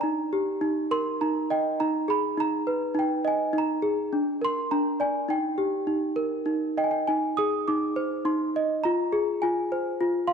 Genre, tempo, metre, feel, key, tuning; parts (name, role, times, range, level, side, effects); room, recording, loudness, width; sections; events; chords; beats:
children's music, lullaby; 103 BPM; 3/4; rubato; Eb major; A4 = 440 Hz
small celesta; solo; 0.0-10.3 s; D4 to Eb6; -24 LUFS; equal
light reverb; dark, warm production; -24 LUFS; side -6 dB against mid
0.0-7.1 A section; 7.1-10.3 B section
0.0 Eb; 1.8 Abm; 3.5 Bb7sus4; 4.1 Bb; 5.3 Eb; 7.1 Ab; 8.8 Fm
| 0.02 0.61 1.21 | 1.79 2.38 2.96 | 3.54 4.12 4.71 | 5.29 5.88 6.47 | 7.08 7.68 8.26 | 8.84 9.42 10.00